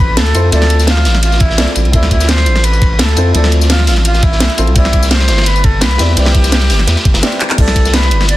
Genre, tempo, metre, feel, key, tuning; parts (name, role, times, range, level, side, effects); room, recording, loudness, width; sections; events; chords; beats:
liquid drum and bass; 170 BPM; 4/4; swing 53% on 16ths; D dorian; A4 = 441 Hz
bright reedy silver concert flute; melody; 0.0-8.4 s; E4 to D5; -18 LUFS; left 1 dB; digital delay
felt-muted upright piano; accompaniment; 0.0-8.4 s; F3 to E5; -20 LUFS; left 1 dB; ping-pong delay
saturated sub bass; bass; 0.0-8.4 s; G1 to F2; -12 LUFS; equal
crunchy breakbeat drum kit; drums; 0.2-8.4 s; hi-hat, ride cymbal, snare drum; -19 LUFS; equal; high-pass filter on cymbals, studio reverb, high-pass filter on hats, high-pass filter on snare, high-pass filter on room
garage drum kit; drums; 0.2-8.4 s; crash cymbal, handclaps, hi-hat, snare drum, tambourine; -16 LUFS; equal; studio reverb
electronic kick drum; drums; 1.4-7.8 s; -12 LUFS; equal; studio reverb
light reverb, small room reverb; dense, heavily limited modern master; -9 LUFS; side -16 dB against mid
0.0-8.4 A section
break 7.2-7.6; drum fill 7.4
0.0 Dm9; 4.8 Cmaj9
0.17 | 0.52 0.88 1.23 1.58 | 1.94 2.29 2.64 2.99 | 3.35 3.70 4.05 4.41 | 4.76 5.11 5.46 5.82 | 6.17 6.52 6.88 7.23 | 7.58 7.93 8.29